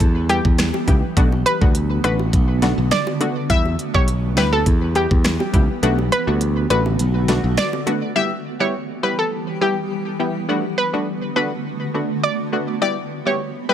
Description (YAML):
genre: dancehall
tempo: 103 BPM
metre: 4/4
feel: straight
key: E minor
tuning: A4 = 440 Hz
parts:
  - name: granular cloud pad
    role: sustained chords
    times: 0.0-13.7 s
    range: D3 to G4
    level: -26 LUFS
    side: right 1 dB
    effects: built-in reverb, sidechain pumping
  - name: modern bright picked electric bass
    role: bass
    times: 0.0-7.6 s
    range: A1 to E2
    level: -20 LUFS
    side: equal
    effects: none
  - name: pop drum kit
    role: drums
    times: 0.0-8.0 s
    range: finger snaps, hi-hat, kick drum, rim click, snare drum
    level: -18 LUFS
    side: equal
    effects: none
  - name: analog pluck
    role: melody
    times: 0.3-13.7 s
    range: G4 to E5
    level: -22 LUFS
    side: equal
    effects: chorus, tape echo
  - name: punchy chord stab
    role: accompaniment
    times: 0.3-13.7 s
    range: G3 to G4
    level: -24 LUFS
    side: left 1 dB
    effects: chorus, sidechain pumping
  - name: bongos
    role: percussion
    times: 0.7-8.0 s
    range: none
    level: -30 LUFS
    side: right 2 dB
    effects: none
room: light reverb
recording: none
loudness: -17 LUFS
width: side -10 dB against mid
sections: 0.0-8.2 A section; 8.2-13.7 A section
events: kick muted 5.8-8.2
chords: 0.0 Em; 1.2 Bm7; 3.5 Em; 5.8 Bm7; 8.2 Em; 10.5 Bm7; 12.8 Em